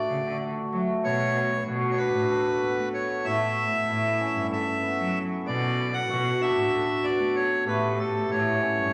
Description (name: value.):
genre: contemporary instrumental, chamber music in an uneven meter.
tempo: 190 BPM (eighths).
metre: 7/8.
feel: straight.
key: unclear.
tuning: A4 = 441 Hz.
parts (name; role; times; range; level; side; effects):
accordion; melody; 0.0-8.9 s; A4 to F#5; -30 LUFS; equal; none.
cimbalom; arpeggios; 0.0-8.9 s; A3 to A4; -31 LUFS; equal; none.
rich cello; bass; 0.1-8.9 s; G2 to A3; -34 LUFS; equal; none.
mellow clarinet; second line; 1.1-8.9 s; E4 to G4; -32 LUFS; equal; none.
room: wet recital hall reverb, RT60 1.6 s.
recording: vinyl crackle.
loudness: -26 LUFS.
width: mono.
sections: 0.0-1.0 A section; 1.0-8.9 B section.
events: none.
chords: 0.0 Dmaj7; 1.0 Bmadd9; 3.3 A; 5.5 Bm; 7.7 A7.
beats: 0.10 0.41 0.73 | 1.04 1.36 1.67 1.99 2.31 2.62 2.94 | 3.25 3.57 3.88 4.20 4.51 4.83 5.14 | 5.46 5.77 6.09 6.40 6.71 7.03 7.34 | 7.66 7.97 8.29 8.60 8.92.